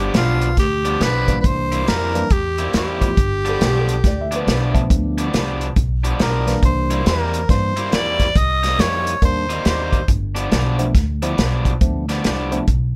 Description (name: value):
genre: electric blues shuffle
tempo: 139 BPM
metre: 4/4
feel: swing 63% on 8ths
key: G mixolydian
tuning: A4 = 440 Hz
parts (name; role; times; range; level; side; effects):
- growling tenor saxophone; melody; 0.0-10.1 s; F4 to Eb5; -24 LUFS; equal; none
- raw garage guitar; riff; 0.0-12.6 s; G2 to E4; -27 LUFS; equal; overdrive
- upright bass; bass; 0.0-13.0 s; G1 to G2; -24 LUFS; equal; none
- warm soul drum kit; drums; 0.1-12.8 s; hi-hat, kick drum, snare drum; -21 LUFS; equal; none
- percussive tonewheel organ; accompaniment; 1.3-12.7 s; Eb3 to F4; -26 LUFS; equal; slow rotary speaker
- dark upright piano; second line; 3.5-4.6 s; G4 to E5; -29 LUFS; equal; analog delay
room: little or no reverb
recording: none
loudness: -18 LUFS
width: mono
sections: 0.0-13.0 A section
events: none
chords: 0.0 G7; 1.4 C7; 3.2 G7; 6.6 C7; 8.4 Cm7; 10.1 G7